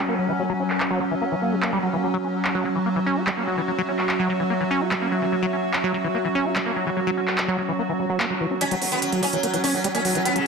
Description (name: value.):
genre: psychedelic trance.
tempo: 146 BPM.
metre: 4/4.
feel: straight.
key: unclear.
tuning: A4 = 440 Hz.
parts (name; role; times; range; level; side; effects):
evolving wavetable pad; sustained chords; 0.0-10.5 s; F#3 to F#4; -26 LUFS; equal; chorus, built-in reverb.
airy breathy pad; texture; 0.0-10.5 s; C#4 to F#5; -30 LUFS; right 4 dB; chorus, phaser.
liquid acid bass; riff; 0.1-10.4 s; E3 to G4; -26 LUFS; moving between left 4 dB and right 2 dB; chorus, auto-pan, tape echo.
big-room dance drum kit; drums; 0.7-10.4 s; handclaps, hi-hat; -27 LUFS; equal; overdrive, low-pass filter on snare, low-pass filter on hats, low-pass filter on room.
sitar; melody; 8.6-10.4 s; C#3 to C#4; -24 LUFS; right 1 dB; phaser, tape echo.
riser; sound effects; 9.9-10.5 s; none; -38 LUFS; left 3 dB; none.
round analog bass; bass; 8.7-10.4 s; F#1 to F#2; -36 LUFS; left 1 dB; none.
room: moderate lush hall reverb, RT60 2.0 s, digital ambience.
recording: dense, heavily limited modern master.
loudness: -21 LUFS.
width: side -5 dB against mid.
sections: 0.0-8.6 A section; 8.6-10.5 B section.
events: filter sweep on acid bass 0.0-8.6; build-up 8.6-10.5.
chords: 0.0 F#5.